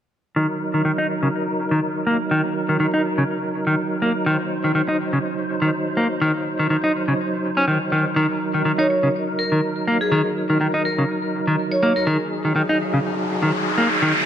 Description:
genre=breakbeat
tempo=123 BPM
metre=4/4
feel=swing 55% on 16ths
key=Eb dorian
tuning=A4 = 440 Hz
part: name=tonewheel organ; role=sustained chords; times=0.4-14.3 s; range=Gb3 to C5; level=-24 LUFS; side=right 1 dB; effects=chorus vibrato, slow rotary speaker, low-pass filter
part: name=clean electric guitar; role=riff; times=0.4-14.1 s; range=Db3 to Eb4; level=-20 LUFS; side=equal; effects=vintage 12-bit sampler grit, low-pass filter, ping-pong delay
part: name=vibraphone with hard mallets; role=melody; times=8.8-12.2 s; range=Ab4 to Db5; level=-24 LUFS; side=equal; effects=AM radio sound, ping-pong delay
part: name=riser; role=sound effects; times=12.6-14.3 s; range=none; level=-23 LUFS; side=equal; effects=none
room=moderate lush hall reverb, RT60 2.5 s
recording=none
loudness=-18 LUFS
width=side -10 dB against mid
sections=0.4-14.3 A section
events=riser 12.6-14.3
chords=0.4 Ebm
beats=| 0.36 0.85 1.34 1.83 | 2.31 2.80 3.29 3.78 | 4.26 4.75 5.24 5.73 | 6.22 6.70 7.19 7.68 | 8.17 8.65 9.14 9.63 | 10.12 10.61 11.09 11.58 | 12.07 12.56 13.04 13.53 | 14.02

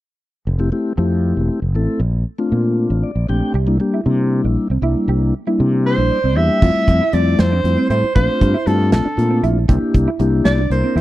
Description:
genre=electric jazz fusion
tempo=78 BPM (dotted quarters)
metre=6/8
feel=straight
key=F major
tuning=A4 = 440 Hz
part: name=fretless electric bass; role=bass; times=0.5-11.0 s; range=E1 to C3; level=-17 LUFS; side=equal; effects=none
part: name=mellow tonewheel organ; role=accompaniment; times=0.6-11.0 s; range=G3 to G5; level=-20 LUFS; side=left 2 dB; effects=slow rotary speaker
part: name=mellow electric guitar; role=stabs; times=3.6-11.0 s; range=C4 to G4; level=-25 LUFS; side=right 7 dB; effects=wide subtle chorus
part: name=breathy soprano saxophone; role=melody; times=5.9-11.0 s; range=A4 to E5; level=-19 LUFS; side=right 1 dB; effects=slapback echo
part: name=modern studio drum kit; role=drums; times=6.6-11.0 s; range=crash cymbal, hi-hat, kick drum, snare drum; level=-18 LUFS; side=equal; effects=none
room=small room ambience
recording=dry, close 1970s-style studio recording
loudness=-14 LUFS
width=side -16 dB against mid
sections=0.5-6.6 A section; 6.6-11.0 B section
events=tonewheel organ fill 2.8-3.5, 5.9-6.6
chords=0.5 Fmaj9; 2.0 Bbmaj9; 3.5 C9; 6.6 Fmaj9; 8.2 Bbmaj9; 9.7 C9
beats=| 0.46 1.23 | 2.00 2.77 | 3.54 4.32 | 5.08 5.85 | 6.62 7.39 | 8.16 8.92 | 9.69 10.46

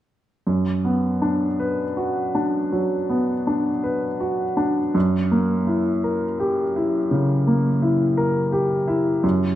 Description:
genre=classical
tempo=52-57 BPM (dotted quarters)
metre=12/8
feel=rubato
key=B minor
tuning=A4 = 441 Hz
part: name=clear baby grand piano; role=accompaniment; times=0.5-9.6 s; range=F#2 to B4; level=-19 LUFS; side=equal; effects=none
room=moderate recital hall reverb, RT60 1.5 s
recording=dark, warm production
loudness=-19 LUFS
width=side -13 dB against mid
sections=0.5-9.6 A section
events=none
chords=0.5 Bm/F#; 4.9 F#7b9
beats=| 0.47 1.60 2.72 3.83 | 4.95 6.04 7.11 8.17 | 9.23

